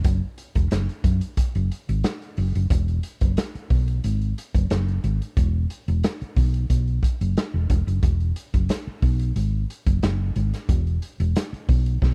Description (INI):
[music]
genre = funk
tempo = 90 BPM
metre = 4/4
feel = straight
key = unclear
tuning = A4 = 440 Hz
[part]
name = hollow-body short-scale fingered electric bass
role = bass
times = 0.0-12.1 s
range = E1 to F#2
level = -24 LUFS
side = equal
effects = none
[part]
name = raw garage drum kit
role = drums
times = 0.0-12.1 s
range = hi-hat, kick drum, snare drum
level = -26 LUFS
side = equal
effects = none
[sound]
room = little or no reverb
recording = dry, close 1970s-style studio recording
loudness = -23 LUFS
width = mono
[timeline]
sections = 0.0-2.7 A section; 2.7-12.1 B section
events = none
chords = none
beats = | 0.05 0.71 1.38 2.04 | 2.71 3.37 4.04 4.70 | 5.37 6.03 6.70 7.36 | 8.03 8.69 9.36 10.02 | 10.69 11.35 12.02